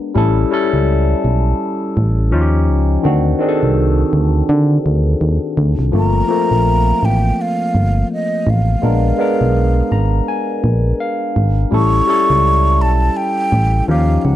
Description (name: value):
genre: R&B, neo-soul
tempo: 83 BPM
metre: 4/4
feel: swing 60% on 16ths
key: G minor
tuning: A4 = 440 Hz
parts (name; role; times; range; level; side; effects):
- barky tine electric piano; accompaniment; 0.0-14.4 s; Eb3 to Bb5; -18 LUFS; left 2 dB; phaser
- solid FM bass; bass; 0.2-14.4 s; G1 to D3; -14 LUFS; equal; none
- breathy mellow concert flute; melody; 6.0-14.4 s; Eb5 to C#6; -18 LUFS; right 1 dB; slapback echo
room: little or no reverb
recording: dry, close 1970s-style studio recording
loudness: -13 LUFS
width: side -12 dB against mid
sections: 0.0-5.9 A section; 5.9-14.4 A section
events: tine electric piano fill 9.5-11.7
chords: 0.1 A7; 2.3 Eb9; 3.0 D7b9; 5.9 Gm11; 8.8 Bb7b9; 11.7 A7